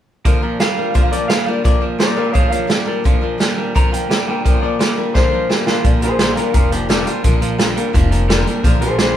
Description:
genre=rockabilly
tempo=172 BPM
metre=4/4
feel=straight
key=Bb major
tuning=A4 = 438 Hz
part: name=twangy electric guitar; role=riff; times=0.2-9.1 s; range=Bb2 to G3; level=-22 LUFS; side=right 5 dB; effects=none
part: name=picked steel-string acoustic guitar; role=accompaniment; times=0.3-9.2 s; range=Bb2 to Bb4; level=-23 LUFS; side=left 6 dB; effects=none
part: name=vintage drum kit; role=drums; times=0.3-9.1 s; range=hi-hat, kick drum, snare drum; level=-16 LUFS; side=equal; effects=none
part: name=electric guitar through a small old amp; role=melody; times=0.6-9.2 s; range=D4 to Bb5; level=-21 LUFS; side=left 1 dB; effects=none
part: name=upright bass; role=bass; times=5.8-9.1 s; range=F1 to Bb1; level=-21 LUFS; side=equal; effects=none
room=light reverb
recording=band playing live in one room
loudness=-13 LUFS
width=side -10 dB against mid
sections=0.2-5.8 A section; 5.8-9.2 B section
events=drum fill 5.1-5.8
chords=0.2 Bb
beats=| 0.25 0.60 0.95 1.30 | 1.65 2.00 2.35 2.70 | 3.05 3.40 3.75 4.10 | 4.45 4.80 5.15 5.50 | 5.84 6.19 6.54 6.89 | 7.24 7.59 7.94 8.29 | 8.64 8.98

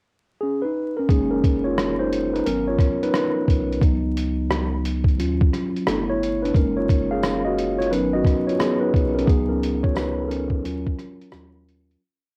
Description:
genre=lo-fi hip hop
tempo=88 BPM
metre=4/4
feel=swing 65% on 16ths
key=unclear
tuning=A4 = 438 Hz
part: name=mellow tine electric piano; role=accompaniment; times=0.4-12.0 s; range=Gb3 to F5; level=-24 LUFS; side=equal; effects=cassette tape, low-pass filter
part: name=warm sub bass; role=bass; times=1.1-12.0 s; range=Gb1 to Eb2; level=-32 LUFS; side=equal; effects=none
part: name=lo-fi sampler-style drum kit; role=drums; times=1.1-12.0 s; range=hi-hat, kick drum, rim click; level=-24 LUFS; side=equal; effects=cassette tape
part: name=tambourine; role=percussion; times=7.2-11.5 s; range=none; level=-48 LUFS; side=equal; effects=none
room=light reverb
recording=home recording on cassette, vinyl crackle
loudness=-22 LUFS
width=mono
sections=0.0-1.1 pickup bar; 1.1-12.0 A section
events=tine electric piano solo 1.1-12.0; fade-out 9.3-12.0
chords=0.0 Dbsus2; 1.1 Gb69; 2.5 Abm11; 3.8 Db9sus4; 5.2 Ebm9; 5.9 G69; 6.5 Gb69; 7.9 Abm11; 9.3 Db9sus4; 10.6 Ebm9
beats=0.41 | 1.09 1.77 2.45 3.14 | 3.82 4.50 5.18 5.86 | 6.54 7.23 7.91 8.59 | 9.27 9.95 10.64 11.32

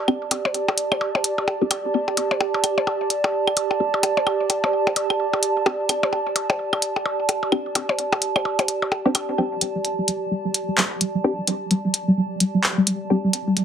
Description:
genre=minimal techno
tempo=129 BPM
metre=4/4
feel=swing 60% on 16ths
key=unclear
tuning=A4 = 440 Hz
part: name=warbly tape-like pad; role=texture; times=0.0-13.6 s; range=G4 to A5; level=-24 LUFS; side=right 2 dB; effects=chorus, built-in reverb
part: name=filtered dub chord stab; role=stabs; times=0.1-13.2 s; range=C4 to G4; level=-24 LUFS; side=left 1 dB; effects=phaser, wide subtle chorus, tape echo
part: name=percussion blips and claves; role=percussion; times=0.1-9.3 s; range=none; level=-23 LUFS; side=left 2 dB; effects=tape echo
part: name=minimal click drum kit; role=drums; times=0.3-13.6 s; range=handclaps, hi-hat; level=-20 LUFS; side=left 1 dB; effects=none
part: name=resonant blip pluck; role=riff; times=9.4-13.6 s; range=G3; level=-21 LUFS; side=equal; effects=phaser, lush chorus, digital delay
room=wet studio reverb, RT60 0.5 s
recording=heavily compressed radio sound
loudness=-20 LUFS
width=side -8 dB against mid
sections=0.0-9.4 A section; 9.4-13.6 B section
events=filter sweep on synth stab 0.0-9.4; build-up 9.4-13.6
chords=0.0 G5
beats=| 0.08 0.54 1.01 1.48 | 1.94 2.40 2.87 3.33 | 3.80 4.26 4.73 5.20 | 5.66 6.13 6.59 7.06 | 7.52 7.99 8.45 8.92 | 9.38 9.85 10.31 10.78 | 11.24 11.71 12.17 12.64 | 13.10 13.57

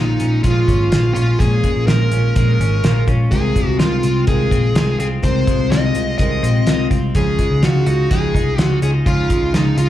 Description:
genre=jangly indie pop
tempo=125 BPM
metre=4/4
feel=straight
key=Bb minor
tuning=A4 = 440 Hz
part: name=dark smooth lead guitar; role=melody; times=0.0-9.9 s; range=Eb4 to Eb5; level=-21 LUFS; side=right 1 dB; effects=overdrive, slapback echo
part: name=picked steel-string acoustic guitar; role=accompaniment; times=0.0-9.9 s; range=Bb2 to F4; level=-25 LUFS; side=right 6 dB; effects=slapback echo
part: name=twelve-string electric guitar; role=arpeggios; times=0.0-9.9 s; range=Bb2 to F4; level=-23 LUFS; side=left 5 dB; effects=slapback echo
part: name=vintage muted picked electric bass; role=bass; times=0.0-9.9 s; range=Ab1 to Db2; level=-17 LUFS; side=equal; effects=none
part: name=cloth-damped thuddy drum kit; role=drums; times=0.2-9.9 s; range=hi-hat, kick drum, snare drum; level=-19 LUFS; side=equal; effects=none
room=light reverb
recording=live gig heard through the venue's PA, club reverb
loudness=-14 LUFS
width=side -12 dB against mid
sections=0.0-9.9 A section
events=none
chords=0.0 Bbm7; 3.3 Fm7; 7.1 Dbadd9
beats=0.44 0.92 | 1.40 1.88 2.36 2.84 | 3.32 3.80 4.28 4.75 | 5.23 5.71 6.19 6.67 | 7.15 7.63 8.11 8.58 | 9.06 9.54

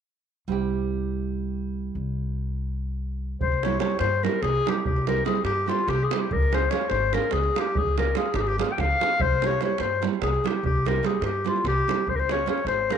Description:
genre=balkan folk, Balkan wedding band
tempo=291 BPM (eighths)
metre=7/8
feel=straight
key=C phrygian dominant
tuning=A4 = 440 Hz
part: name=nylon-string guitar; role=accompaniment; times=0.5-13.0 s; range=G3 to Ab4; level=-30 LUFS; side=right 10 dB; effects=none
part: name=upright bass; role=bass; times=0.5-12.9 s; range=Ab1 to G2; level=-28 LUFS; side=left 1 dB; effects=none
part: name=mellow clarinet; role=melody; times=3.4-13.0 s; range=F4 to G5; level=-25 LUFS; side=left 4 dB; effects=none
part: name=davul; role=percussion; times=3.4-13.0 s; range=none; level=-29 LUFS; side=right 5 dB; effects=none
room=moderate spring reverb, RT60 1.8 s, studio reverb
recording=1960s-style stereo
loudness=-22 LUFS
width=side -8 dB against mid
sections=0.5-3.4 A section; 3.4-13.0 B section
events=none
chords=0.5 C; 6.3 Db; 9.2 C; 12.1 Db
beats=| 0.49 0.70 0.91 1.12 1.33 1.54 1.75 | 1.96 2.17 2.37 2.58 2.79 3.00 3.21 | 3.41 3.62 3.83 4.04 4.24 4.45 4.66 | 4.86 5.07 5.28 5.49 5.69 5.90 6.11 | 6.31 6.52 6.72 6.93 7.14 7.34 7.55 | 7.76 7.96 8.17 8.37 8.58 8.79 8.99 | 9.20 9.40 9.61 9.82 10.02 10.23 10.43 | 10.64 10.85 11.05 11.26 11.46 11.67 11.87 | 12.08 12.28 12.49 12.70 12.90

